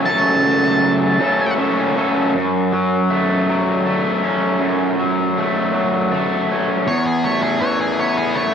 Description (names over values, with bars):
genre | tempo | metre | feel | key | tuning
rock | 53 BPM (dotted quarters) | 6/8 | straight | unclear | A4 = 440 Hz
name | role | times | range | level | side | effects
octave-fuzz lead guitar | melody | 0.0-1.5, 6.9-8.5 s | G#4 to A5 | -20 LUFS | equal | distortion
raw garage guitar | riff | 0.0-8.5 s | E2 to A4 | -16 LUFS | equal | overdrive
room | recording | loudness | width
light reverb, digital ambience | dark, warm production | -15 LUFS | side -7 dB against mid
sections
0.0-2.3 A section; 2.3-6.9 B section; 6.9-8.5 C section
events
lead electric guitar solo 6.9-8.5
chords
0.0 F#m; 6.9 Esus4